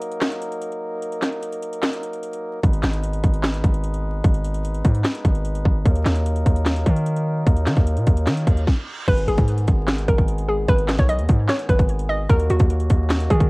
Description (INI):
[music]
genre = hip hop, trap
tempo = 149 BPM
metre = 4/4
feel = half-time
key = G# minor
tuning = A4 = 440 Hz
[part]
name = mellow accordion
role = sustained chords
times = 0.0-13.5 s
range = D#3 to B4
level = -30 LUFS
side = equal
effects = none
[part]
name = trap drum kit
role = drums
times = 0.0-13.5 s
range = crash cymbal, handclaps, hi-hat, kick drum, snare drum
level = -19 LUFS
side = equal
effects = overdrive
[part]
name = distorted 808-style bass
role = bass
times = 2.6-13.5 s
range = G#1 to D#3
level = -21 LUFS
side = equal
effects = distortion
[part]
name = reverse cymbal and impact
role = sound effects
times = 8.5-10.7 s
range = none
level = -36 LUFS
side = equal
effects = none
[part]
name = hollow square pluck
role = melody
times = 9.1-13.5 s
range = F#4 to D#5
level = -24 LUFS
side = equal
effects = chorus
[sound]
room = little or no reverb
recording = worn, warbling old tape, cassette tape, vinyl crackle, warbly pitch drift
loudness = -18 LUFS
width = side -26 dB against mid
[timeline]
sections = 0.0-9.1 A section; 9.1-13.5 B section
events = break 0.0-2.6; reverse cymbal 8.5-9.1; stop 8.7-9.1; impact 9.1-10.7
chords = 0.0 D#m; 2.6 G#m; 5.9 D#m; 9.1 G#m; 12.3 D#m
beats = 0.22 0.62 | 1.02 1.43 1.83 2.23 | 2.63 3.04 3.44 3.84 | 4.24 4.65 5.05 5.45 | 5.86 6.26 6.66 7.06 | 7.46 7.87 8.27 8.67 | 9.08 9.48 9.88 10.28 | 10.69 11.09 11.49 11.89 | 12.30 12.70 13.10